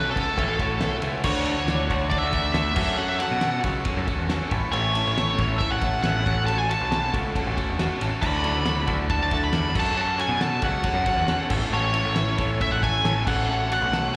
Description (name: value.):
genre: indie rock.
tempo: 137 BPM.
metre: 4/4.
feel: straight.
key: unclear.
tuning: A4 = 440 Hz.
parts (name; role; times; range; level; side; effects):
nasal lead guitar with a parked wah; melody; 0.0-14.1 s; A4 to B5; -28 LUFS; equal; overdrive, slapback echo, plate reverb.
glockenspiel with soft plastic mallets; second line; 0.0-14.1 s; C#6 to B6; -40 LUFS; equal; none.
combo organ; sustained chords; 0.0-14.2 s; A4 to D6; -43 LUFS; equal; none.
biting overdriven guitar; riff; 0.0-14.2 s; D3 to A4; -36 LUFS; equal; slapback echo.
twelve-string electric guitar; riff; 0.0-14.2 s; D3 to D5; -32 LUFS; equal; analog chorus, slapback echo.
growling picked electric bass; bass; 0.0-14.1 s; E1 to B2; -29 LUFS; equal; overdrive.
cloth-damped thuddy drum kit; drums; 0.2-14.0 s; crash cymbal, kick drum, ride cymbal, snare drum; -31 LUFS; equal; none.
room: light reverb.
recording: live gig heard through the venue's PA, recital hall reverb.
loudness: -24 LUFS.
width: mono.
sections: 0.0-1.2 A section; 1.2-14.2 A section.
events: none.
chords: 0.4 A6; 1.2 Dadd9; 2.8 F#m; 4.5 A; 6.3 F#m/A; 8.2 Dadd9; 9.8 F#m; 11.5 A; 13.3 F#m/A.